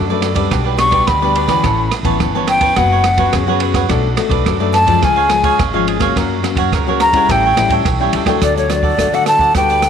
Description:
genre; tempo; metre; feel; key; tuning
samba and choro; 106 BPM; 4/4; straight; unclear; A4 = 440 Hz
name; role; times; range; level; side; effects
cavaquinho; accompaniment; 0.0-9.9 s; D4 to A5; -20 LUFS; right 14 dB; none
nylon-string guitar; accompaniment; 0.0-9.9 s; F#2 to F#4; -19 LUFS; left 12 dB; none
upright bass; bass; 0.0-9.9 s; F#1 to D3; -20 LUFS; equal; none
open jazz drum kit; drums; 0.2-9.9 s; hi-hat, kick drum, ride cymbal, rim click; -20 LUFS; right 4 dB; none
breathy hollow jazz flute; melody; 0.8-9.9 s; C#5 to C#6; -14 LUFS; left 1 dB; none
room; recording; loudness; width
light reverb, small room reverb; 1960s-style stereo with parts hard left and right; -12 LUFS; side -8 dB against mid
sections
0.0-8.4 A section; 8.4-9.9 B section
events
flute solo 0.0-8.4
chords
0.0 Bm7; 0.5 G/B; 1.7 Aadd9; 2.8 F#sus4; 3.9 Bm7; 5.0 C#; 6.2 F#; 7.3 A7; 8.4 D

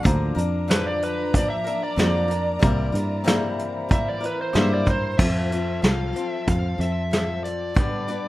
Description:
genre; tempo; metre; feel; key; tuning
folk rock and heartland rock; 93 BPM; 4/4; straight; unclear; A4 = 443 Hz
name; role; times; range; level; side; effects
overdriven slide guitar; second line; 0.0-5.2 s; B4 to E5; -27 LUFS; right 1 dB; none
picked swing-style acoustic guitar; accompaniment; 0.0-8.3 s; G2 to B4; -28 LUFS; left 3 dB; none
rich studio string section; sustained chords; 0.1-8.3 s; E3 to Bb5; -36 LUFS; right 1 dB; none
fingered electric bass; bass; 0.1-8.3 s; C2 to G2; -25 LUFS; equal; none
soft brush drum kit; drums; 0.1-8.2 s; crash cymbal, hi-hat, kick drum, snare drum; -23 LUFS; equal; none
dark smooth lead guitar; melody; 4.5-8.3 s; C5 to F5; -30 LUFS; equal; overdrive
room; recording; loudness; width
moderate studio reverb, RT60 0.6 s; rough home demo mix; -20 LUFS; side -16 dB against mid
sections
0.0-5.2 A section; 5.2-8.3 B section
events
electric slide guitar solo 0.0-5.2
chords
0.1 Bb/D; 2.6 C7; 5.2 F; 7.8 G

